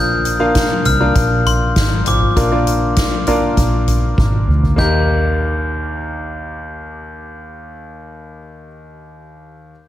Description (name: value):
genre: piano-driven pop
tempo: 99 BPM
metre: 4/4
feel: straight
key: Eb major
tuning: A4 = 440 Hz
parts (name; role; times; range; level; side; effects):
- glockenspiel with brass mallets; melody; 0.0-8.7 s; C6 to G6; -22 LUFS; left 1 dB; none
- bright concert grand piano; accompaniment; 0.0-9.7 s; Eb2 to F5; -20 LUFS; left 1 dB; none
- vintage muted fingered electric bass; bass; 0.0-8.7 s; Ab1 to Eb2; -18 LUFS; equal; none
- soft-mallet drum kit; drums; 0.2-4.9 s; crash cymbal, hi-hat, kick drum, snare drum, toms; -18 LUFS; equal; none
room: light reverb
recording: none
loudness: -13 LUFS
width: side -13 dB against mid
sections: 0.0-4.8 A section; 4.8-7.2 B section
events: drum fill 4.2-4.8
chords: 0.0 Bb; 4.8 Eb